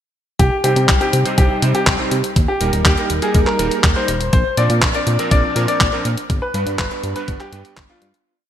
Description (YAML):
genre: italo disco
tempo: 122 BPM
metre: 4/4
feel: straight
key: C minor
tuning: A4 = 441 Hz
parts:
  - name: clear grand piano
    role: melody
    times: 0.4-8.1 s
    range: F4 to D5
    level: -20 LUFS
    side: left 1 dB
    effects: ping-pong delay
  - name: chorused synth bass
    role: bass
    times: 0.4-8.1 s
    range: Eb1 to C3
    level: -19 LUFS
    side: equal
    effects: tube saturation
  - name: detuned 8-bit digital drum machine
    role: drums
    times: 0.4-8.2 s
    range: handclaps, hi-hat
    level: -21 LUFS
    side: left 1 dB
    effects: small room reverb
  - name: electronic kick drum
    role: drums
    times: 0.4-7.9 s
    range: none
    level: -17 LUFS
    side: equal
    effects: small room reverb
  - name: bright electric grand piano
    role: stabs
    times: 0.6-8.1 s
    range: G2 to C5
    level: -23 LUFS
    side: right 2 dB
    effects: ensemble chorus, low-pass filter
room: moderate lush hall reverb, RT60 1.8 s, digital ambience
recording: bright 1980s-style digital production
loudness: -14 LUFS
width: side -10 dB against mid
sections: 0.4-8.3 verse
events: fade-out 5.6-8.3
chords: 0.4 Cm; 2.4 Eb; 4.3 Bbadd9; 6.3 G